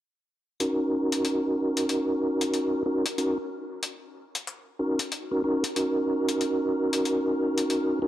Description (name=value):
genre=glitch hop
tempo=93 BPM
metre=4/4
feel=swing 62% on 16ths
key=Eb minor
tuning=A4 = 440 Hz
part: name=mellow tonewheel organ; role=stabs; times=0.6-8.1 s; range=Db4 to Bb4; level=-25 LUFS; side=equal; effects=chorus vibrato, stopped rotary speaker, low-pass filter, dub echo
part: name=electronic hi-hat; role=drums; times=0.6-7.9 s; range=none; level=-31 LUFS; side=left 4 dB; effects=overdrive
room=moderate lush hall reverb, RT60 2.0 s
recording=dark, warm production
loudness=-24 LUFS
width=side -13 dB against mid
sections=0.6-8.1 A section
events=filter sweep on tonewheel organ 0.6-8.1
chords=0.6 Ebm7